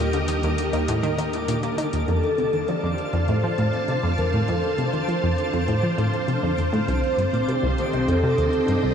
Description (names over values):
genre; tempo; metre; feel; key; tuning
ambient, sequencer-driven space music; 100 BPM; 4/4; straight; unclear; A4 = 439 Hz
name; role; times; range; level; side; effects
mellow horn-like synth lead; melody; 0.0-8.9 s; G4 to D5; -27 LUFS; left 1 dB; chorus, ping-pong delay
string machine, full ensemble; sustained chords; 0.0-8.9 s; C4 to A5; -26 LUFS; equal; ensemble chorus
analog pluck; riff; 0.0-8.9 s; C2 to Bb3; -23 LUFS; equal; chorus, ping-pong delay
round analog bass; bass; 0.0-2.1 s; Eb2; -30 LUFS; equal; none
twinkling granular texture; texture; 0.0-8.9 s; D3 to D6; -32 LUFS; right 1 dB; built-in reverb
electronic hi-hat and woodblock; percussion; 0.1-8.9 s; none; -37 LUFS; left 5 dB; ping-pong delay
room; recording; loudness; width
wet huge ambient reverb, RT60 7.3 s; none; -20 LUFS; side -8 dB against mid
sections
0.0-2.1 A section; 2.1-8.9 B section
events
filter sweep on synth arpeggio sound 2.1-8.9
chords
0.0 Eb; 2.1 F; 6.9 Cmadd9